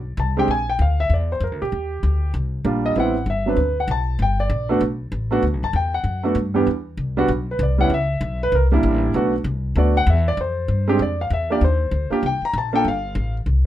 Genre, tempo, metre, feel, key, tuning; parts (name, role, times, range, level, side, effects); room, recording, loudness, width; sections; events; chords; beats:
jazz; 194 BPM; 4/4; swing 62% on 8ths; G major; A4 = 441 Hz
upright bass; bass; 0.0-13.7 s; G1 to G2; -21 LUFS; left 1 dB
warm concert grand piano; melody; 0.2-13.3 s; E2 to Bb5; -20 LUFS; right 1 dB
little or no reverb; minimal, uncompressed stereo recording; -18 LUFS; side -12 dB against mid
0.0-6.7 A section; 6.7-13.7 B section
0.5 Bb; 1.7 Ebmaj9; 3.0 Am7; 3.6 D5; 4.2 Gmaj9; 6.7 E7(no3); 7.9 Bsus24; 8.5 C9; 9.1 Bm7; 10.4 F5; 11.0 Bb (rootless); 11.6 Ebmaj7; 12.9 Gsus2
0.18 | 0.48 0.79 1.10 1.41 | 1.72 2.03 2.34 2.65 | 2.96 3.27 3.58 3.88 | 4.19 4.50 4.81 5.12 | 5.43 5.74 6.05 6.36 | 6.67 6.98 7.29 7.60 | 7.91 8.21 8.52 8.83 | 9.14 9.45 9.76 10.07 | 10.38 10.69 11.00 11.30 | 11.61 11.92 12.23 12.54 | 12.85 13.16 13.47